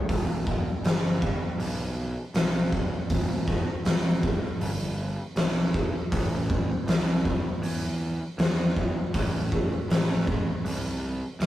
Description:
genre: stoner and doom metal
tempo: 80 BPM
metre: 4/4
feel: straight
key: E minor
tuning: A4 = 440 Hz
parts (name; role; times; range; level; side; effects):
- fuzz picked electric bass; bass; 0.1-11.5 s; E1 to E2; -30 LUFS; equal; overdrive
- oversized low-tuned drum kit; drums; 0.1-11.5 s; hi-hat, kick drum, snare drum; -26 LUFS; equal; none
room: light reverb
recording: rough rehearsal-room recording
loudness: -24 LUFS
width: side -14 dB against mid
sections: 0.1-11.5 A section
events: none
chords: none

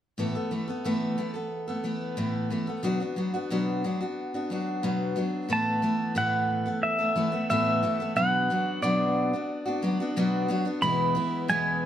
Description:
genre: acoustic folk duo or small band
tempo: 90 BPM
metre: 4/4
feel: straight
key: unclear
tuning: A4 = 443 Hz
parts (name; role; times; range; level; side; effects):
- picked steel-string acoustic guitar; accompaniment; 0.2-11.9 s; E2 to A4; -27 LUFS; left 1 dB; none
- pedal steel guitar; melody; 5.5-11.9 s; D5 to B5; -26 LUFS; right 1 dB; none
room: light reverb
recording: lossy compression artefacts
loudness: -25 LUFS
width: side -10 dB against mid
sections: 0.2-5.5 A section; 5.5-11.9 B section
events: none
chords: 0.2 Asus2; 2.8 Bm; 5.5 Asus2; 8.2 Bm; 10.8 E

